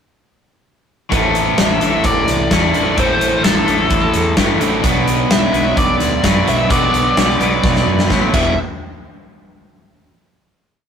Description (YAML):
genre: classic rock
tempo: 129 BPM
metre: 4/4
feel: straight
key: unclear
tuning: A4 = 441 Hz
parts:
  - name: overdriven semi-hollow guitar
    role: riff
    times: 1.1-8.5 s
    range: E2 to B3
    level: -18 LUFS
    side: left 3 dB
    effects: none
  - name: overdriven semi-hollow guitar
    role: riff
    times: 1.1-8.5 s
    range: E2 to F#4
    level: -21 LUFS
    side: right 5 dB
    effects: none
  - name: growling fingered electric bass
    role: bass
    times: 1.1-8.6 s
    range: E1 to A2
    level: -22 LUFS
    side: right 1 dB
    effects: overdrive
  - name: big rock drum kit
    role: drums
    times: 1.1-8.4 s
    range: crash cymbal, hi-hat, kick drum, snare drum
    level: -17 LUFS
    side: left 1 dB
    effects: none
  - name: fuzz lead guitar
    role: melody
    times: 1.6-8.6 s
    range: A4 to E5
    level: -19 LUFS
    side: equal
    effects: wah, distortion
room: moderate studio reverb, RT60 0.5 s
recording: rough rehearsal-room recording, tube saturation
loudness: -12 LUFS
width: side -7 dB against mid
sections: 1.1-8.6 pre-chorus; 8.6-10.4 final hit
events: drum fill 7.6-8.6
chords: 1.1 Am; 4.8 Bm; 8.3 Em; 8.6 N.C.